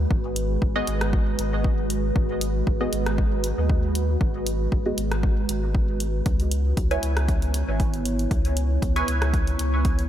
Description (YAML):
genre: dub techno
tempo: 117 BPM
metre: 4/4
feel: swing 54% on 16ths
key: G# minor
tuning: A4 = 439 Hz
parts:
  - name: deep dark ambient pad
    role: sustained chords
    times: 0.0-10.1 s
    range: G#3 to C#5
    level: -29 LUFS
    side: right 2 dB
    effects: chorus, built-in reverb, sidechain pumping
  - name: warm sub bass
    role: bass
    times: 0.0-10.1 s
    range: G#1 to D#2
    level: -25 LUFS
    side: equal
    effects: tube saturation, sidechain pumping
  - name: electronic kick drum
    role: drums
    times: 0.1-10.0 s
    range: none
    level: -24 LUFS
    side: equal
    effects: none
  - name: punchy analog drum machine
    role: drums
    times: 0.4-10.1 s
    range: hi-hat, rim click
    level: -34 LUFS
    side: equal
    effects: none
  - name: filtered dub chord stab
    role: stabs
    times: 0.8-9.3 s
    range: B3 to G#5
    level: -32 LUFS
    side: equal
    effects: phaser, sidechain pumping, dub echo
room: light reverb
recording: none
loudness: -21 LUFS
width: side -11 dB against mid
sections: 0.0-10.1 A section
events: none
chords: 0.0 G#m7; 6.3 C#m7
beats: | 0.11 0.62 1.13 1.65 | 2.16 2.67 3.18 3.70 | 4.21 4.72 5.23 5.75 | 6.26 6.77 7.29 7.80 | 8.31 8.82 9.34 9.85